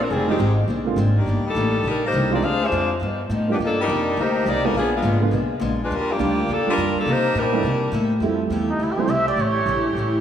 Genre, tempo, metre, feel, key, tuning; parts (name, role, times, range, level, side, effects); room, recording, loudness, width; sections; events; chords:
jazz; 207 BPM; 4/4; swing 62% on 8ths; A4 = 439 Hz
warm saxophone section; melody; 0.0-7.9 s; Eb3 to F5; -22 LUFS; left 2 dB; diffuse ambient delay
upright bass; bass; 0.0-10.2 s; F1 to C3; -24 LUFS; equal
picked old ladder-braced acoustic guitar; accompaniment; 0.1-10.2 s; G2 to A4; -28 LUFS; left 2 dB
warm upright piano; accompaniment; 0.3-9.1 s; D3 to G4; -26 LUFS; right 6 dB; wide subtle chorus
warm saxophone section; sustained chords; 8.2-10.2 s; F3 to G4; -28 LUFS; right 2 dB
trumpet with plunger mute; melody; 8.7-9.9 s; Eb4 to E5; -22 LUFS; right 2 dB; diffuse ambient delay
moderate plate reverb, RT60 2.5 s; dreamy mix soaked in reverb; -18 LUFS; side -9 dB against mid
0.0-8.2 A section; 8.2-10.2 B section
muted trumpet solo 8.2-10.2
0.1 Fm9; 0.7 Bb9; 1.3 Ebmaj7; 2.4 Dm7b5; 3.0 G7b13; 3.6 Cm11; 4.7 Bb7b9; 5.9 Ebmaj9; 7.1 Cm9; 7.6 C13; 8.2 Fmaj9; 9.4 A7